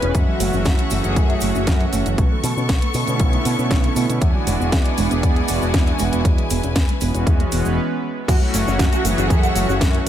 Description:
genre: nu-disco, nu disco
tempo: 118 BPM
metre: 4/4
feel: straight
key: F# minor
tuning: A4 = 440 Hz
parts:
  - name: warm analog pad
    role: accompaniment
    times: 0.0-10.1 s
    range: D3 to B4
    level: -23 LUFS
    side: right 2 dB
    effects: chorus, sidechain pumping, tape echo
  - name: clear studio string section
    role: sustained chords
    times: 0.0-10.1 s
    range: B3 to C#6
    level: -27 LUFS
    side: left 4 dB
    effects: sidechain pumping
  - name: mellow electric guitar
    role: riff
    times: 0.0-0.1, 8.3-10.1 s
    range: C#4 to F#5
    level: -28 LUFS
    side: right 2 dB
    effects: ensemble chorus, tape echo
  - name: picked electric bass with an envelope filter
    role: bass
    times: 0.0-10.1 s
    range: E1 to B2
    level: -22 LUFS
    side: equal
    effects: none
  - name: house drum kit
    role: drums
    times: 0.0-10.1 s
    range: cabasa, crash cymbal, hi-hat, snare drum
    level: -27 LUFS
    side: equal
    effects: overdrive
  - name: soft round pluck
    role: arpeggios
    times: 0.1-10.1 s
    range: E3 to C#4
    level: -28 LUFS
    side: right 3 dB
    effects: chorus, sidechain pumping, digital delay
  - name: electronic kick drum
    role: drums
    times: 0.1-9.9 s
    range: none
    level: -18 LUFS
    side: equal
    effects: overdrive
  - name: cabasa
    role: percussion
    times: 0.1-7.8 s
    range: none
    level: -34 LUFS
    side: right 2 dB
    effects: none
room: little or no reverb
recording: none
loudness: -16 LUFS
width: side -11 dB against mid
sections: 0.0-8.3 A section; 8.3-10.1 B section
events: stop 7.8-8.3; drop 8.3-10.1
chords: 0.1 F#m7; 2.2 Bm9; 4.2 E9; 6.2 C#m7/E; 8.3 F#m7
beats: | 0.15 0.66 1.17 1.67 | 2.18 2.69 3.20 3.71 | 4.22 4.72 5.23 5.74 | 6.25 6.76 7.27 7.78 | 8.28 8.79 9.30 9.81

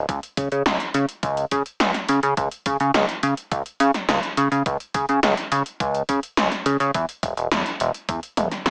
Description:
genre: synthwave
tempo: 105 BPM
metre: 4/4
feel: straight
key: unclear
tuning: A4 = 441 Hz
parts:
  - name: chorused synth bass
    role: bass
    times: 0.0-8.7 s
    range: E1 to C#3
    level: -22 LUFS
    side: equal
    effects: sidechain pumping
  - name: 80s electronic pad drums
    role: drums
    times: 0.1-8.7 s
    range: hi-hat, snare drum, toms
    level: -27 LUFS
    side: equal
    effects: gated reverb on snare and toms
  - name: electronic kick drum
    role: drums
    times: 0.1-8.2 s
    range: none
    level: -32 LUFS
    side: equal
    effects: overdrive
room: light reverb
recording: small speaker sound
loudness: -23 LUFS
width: mono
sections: 0.0-8.7 A section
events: drum fill 8.4-8.7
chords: none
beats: | 0.09 0.66 1.23 1.80 | 2.37 2.94 3.52 4.09 | 4.66 5.23 5.80 6.37 | 6.95 7.52 8.09 8.66

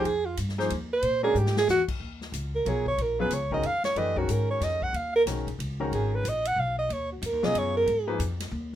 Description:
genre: modal jazz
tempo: 184 BPM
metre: 3/4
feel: swing 63% on 8ths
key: Eb minor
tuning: A4 = 440 Hz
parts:
  - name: clear alto saxophone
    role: melody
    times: 0.0-8.2 s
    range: F4 to Gb5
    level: -26 LUFS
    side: right 2 dB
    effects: none
  - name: clear grand piano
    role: accompaniment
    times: 0.0-8.2 s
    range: Db3 to Db5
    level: -31 LUFS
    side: left 2 dB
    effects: none
  - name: upright bass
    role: bass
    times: 0.0-8.8 s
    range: Ab1 to Bb2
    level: -31 LUFS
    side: left 1 dB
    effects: none
  - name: swinging big-band drum kit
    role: drums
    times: 0.1-8.8 s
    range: crash cymbal, hi-hat, kick drum, ride cymbal, snare drum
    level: -38 LUFS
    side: left 2 dB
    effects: none
room: light reverb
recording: minimal, uncompressed stereo recording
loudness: -24 LUFS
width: side -11 dB against mid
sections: 0.0-2.0 A section; 2.0-8.8 A section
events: alto saxophone solo 0.0-8.8; drum fill 1.4-1.7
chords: 0.0 F7sus2; 1.0 Bb7(no3); 2.0 Ebm11; 5.9 Abm11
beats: | 0.05 0.38 0.70 | 1.03 1.36 1.68 | 2.01 2.33 2.66 | 2.99 3.31 3.64 | 3.96 4.29 4.62 | 4.94 5.27 5.59 | 5.92 6.25 6.57 | 6.90 7.22 7.55 | 7.88 8.20 8.53

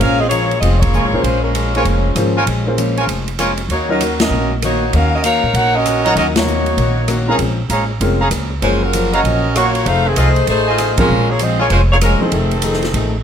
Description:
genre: jazz, big band swing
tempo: 195 BPM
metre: 4/4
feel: swing 63% on 8ths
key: Bb minor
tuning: A4 = 440 Hz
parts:
  - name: mellow saxophone section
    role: melody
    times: 0.0-13.2 s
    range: Eb3 to Gb5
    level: -16 LUFS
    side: equal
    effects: none
  - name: picked plugged-in swing-style acoustic guitar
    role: accompaniment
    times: 0.0-13.2 s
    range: Gb2 to G#4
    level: -24 LUFS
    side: left 3 dB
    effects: none
  - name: warm concert grand piano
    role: accompaniment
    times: 0.0-4.0, 6.1-12.3 s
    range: F3 to F5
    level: -20 LUFS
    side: left 1 dB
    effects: none
  - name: upright bass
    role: bass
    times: 0.0-13.2 s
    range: F1 to Bb2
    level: -18 LUFS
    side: equal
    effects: none
  - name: swinging big-band drum kit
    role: drums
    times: 0.0-13.0 s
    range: hi-hat, kick drum, ride cymbal, rim click, snare drum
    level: -23 LUFS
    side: right 1 dB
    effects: none
  - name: warm trumpet section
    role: stabs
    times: 0.9-3.5, 6.1-11.7 s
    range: F4 to Db6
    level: -20 LUFS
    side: right 2 dB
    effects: none
room: light reverb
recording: none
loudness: -13 LUFS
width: side -8 dB against mid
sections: 0.0-13.2 A section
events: band accent 0.8, 4.2, 6.3, 10.9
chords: 0.0 Bbm7; 3.7 Ebm7; 7.4 Bbm7; 8.6 Gbmaj7; 9.9 F7#9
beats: | 0.02 0.33 0.63 0.94 | 1.25 1.55 1.86 2.17 | 2.48 2.78 3.09 3.40 | 3.70 4.01 4.32 4.63 | 4.93 5.24 5.55 5.86 | 6.17 6.47 6.78 7.09 | 7.40 7.70 8.01 8.32 | 8.63 8.94 9.24 9.55 | 9.86 10.17 10.47 10.78 | 11.09 11.40 11.71 12.01 | 12.32 12.63 12.94

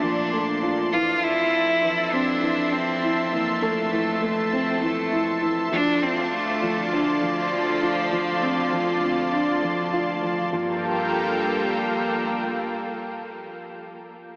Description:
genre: piano and strings electronica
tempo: 100 BPM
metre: 4/4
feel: straight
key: G dorian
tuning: A4 = 440 Hz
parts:
  - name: clear cello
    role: melody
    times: 0.0-13.7 s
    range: F3 to F4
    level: -26 LUFS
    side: equal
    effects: diffuse ambient delay
  - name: lush unison pad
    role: sustained chords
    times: 0.0-13.7 s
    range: F3 to C6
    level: -25 LUFS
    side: equal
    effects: chorus
  - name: felt-muted upright piano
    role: riff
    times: 0.0-14.4 s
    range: E3 to F4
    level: -26 LUFS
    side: equal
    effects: diffuse ambient delay
  - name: rich chamber cello section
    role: bass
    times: 0.0-12.3 s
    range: D2 to Bb2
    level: -32 LUFS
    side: equal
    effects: none
room: wet huge ambient reverb, RT60 7.5 s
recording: dreamy mix soaked in reverb, AM radio sound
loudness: -20 LUFS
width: side -38 dB against mid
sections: 0.0-10.5 A section; 10.5-12.9 B section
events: drop 0.0-10.5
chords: 0.0 Bbmaj7; 0.9 Fmaj7; 5.7 Dm7; 10.5 Gm7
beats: 0.33 | 0.93 1.52 2.12 2.73 | 3.33 3.92 4.53 5.12 | 5.72 6.33 6.92 7.53 | 8.12 8.72 9.32 9.93 | 10.53 11.12 11.72 12.32

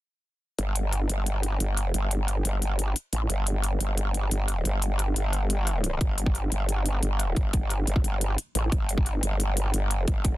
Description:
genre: dark technical drum and bass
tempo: 177 BPM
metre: 4/4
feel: straight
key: unclear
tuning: A4 = 439 Hz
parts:
  - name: growl bass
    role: bass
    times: 0.6-10.4 s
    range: G1 to A1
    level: -25 LUFS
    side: equal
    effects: chorus, sidechain pumping
  - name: electronic hi-hat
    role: drums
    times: 0.6-10.3 s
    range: none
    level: -31 LUFS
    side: left 2 dB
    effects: none
  - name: electronic kick drum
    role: drums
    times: 6.0-10.3 s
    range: none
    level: -24 LUFS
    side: equal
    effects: none
room: little or no reverb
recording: dense, heavily limited modern master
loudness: -24 LUFS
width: side -17 dB against mid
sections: 0.6-10.4 A section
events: none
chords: none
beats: | 0.59 0.93 1.26 1.60 | 1.94 2.28 2.62 2.96 | 3.30 3.64 3.98 4.32 | 4.65 4.99 5.33 5.67 | 6.01 6.35 6.69 7.03 | 7.37 7.71 8.04 8.38 | 8.72 9.06 9.40 9.74 | 10.08

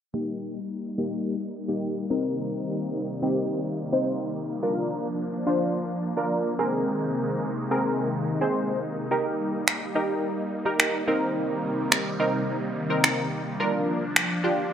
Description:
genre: dance-pop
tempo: 107 BPM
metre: 4/4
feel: straight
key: C minor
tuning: A4 = 441 Hz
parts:
  - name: funky polysynth comp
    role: accompaniment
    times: 0.1-14.7 s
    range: Bb3 to C5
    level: -27 LUFS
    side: equal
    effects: chorus, low-pass filter
  - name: supersaw pad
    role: sustained chords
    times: 0.1-14.7 s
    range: C3 to Eb4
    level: -29 LUFS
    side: equal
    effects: phaser, low-pass filter
  - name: electronic finger snaps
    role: drums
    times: 9.7-14.3 s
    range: none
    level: -22 LUFS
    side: right 2 dB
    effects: overdrive, gated reverb
room: moderate plate reverb, RT60 2.1 s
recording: bright 1980s-style digital production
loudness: -24 LUFS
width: side -9 dB against mid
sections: 0.1-14.7 A section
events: filter sweep 0.1-14.7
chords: 0.1 Eb; 2.1 Cm7; 4.6 Bb; 6.6 Abadd9; 9.1 Eb; 11.1 Cm7; 13.6 Bb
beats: | 0.14 0.70 1.26 1.82 | 2.38 2.95 3.51 4.07 | 4.63 5.19 5.75 6.31 | 6.87 7.43 7.99 8.55 | 9.11 9.68 10.24 10.80 | 11.36 11.92 12.48 13.04 | 13.60 14.16 14.72

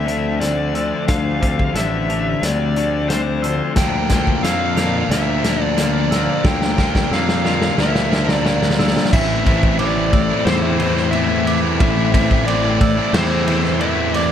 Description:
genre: post-rock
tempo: 90 BPM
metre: 4/4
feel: straight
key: unclear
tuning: A4 = 440 Hz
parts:
  - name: dark smooth lead guitar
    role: melody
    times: 0.0-14.3 s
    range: C5 to G5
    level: -23 LUFS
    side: left 1 dB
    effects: overdrive, tape echo
  - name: dark analog pad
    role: sustained chords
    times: 0.0-14.3 s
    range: F3 to A5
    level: -31 LUFS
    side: right 1 dB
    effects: none
  - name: glockenspiel with rubber mallets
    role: arpeggios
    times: 0.0-14.3 s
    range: D6 to F7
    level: -30 LUFS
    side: right 6 dB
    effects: tape echo
  - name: semi-hollow electric guitar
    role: arpeggios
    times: 0.0-9.1 s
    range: D3 to A4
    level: -30 LUFS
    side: left 3 dB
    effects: none
  - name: distorted electric guitar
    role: riff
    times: 0.0-14.3 s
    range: A2 to E4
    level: -22 LUFS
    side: left 11 dB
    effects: distortion
  - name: fuzz fingered electric bass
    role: bass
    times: 0.0-14.3 s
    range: A1 to F2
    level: -22 LUFS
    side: equal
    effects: overdrive
  - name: loose indie drum kit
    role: drums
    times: 0.1-14.3 s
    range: crash cymbal, hi-hat, kick drum, ride cymbal, snare drum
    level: -20 LUFS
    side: equal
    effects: none
  - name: thick fuzz guitar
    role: riff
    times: 3.8-14.3 s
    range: A2 to Bb4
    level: -23 LUFS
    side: right 13 dB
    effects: distortion
room: moderate booth ambience, RT60 0.2 s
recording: none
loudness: -15 LUFS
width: side -9 dB against mid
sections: 0.0-9.1 A section; 9.1-14.3 B section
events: build-up 0.0-9.1; drum fill 0.0-9.1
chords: 0.0 Dm7; 3.8 Bbmaj7/D; 9.1 Am7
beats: 0.42 | 1.09 1.76 2.43 3.10 | 3.77 4.44 5.11 5.78 | 6.45 7.12 7.79 8.46 | 9.13 9.79 10.46 11.13 | 11.80 12.47 13.14 13.81

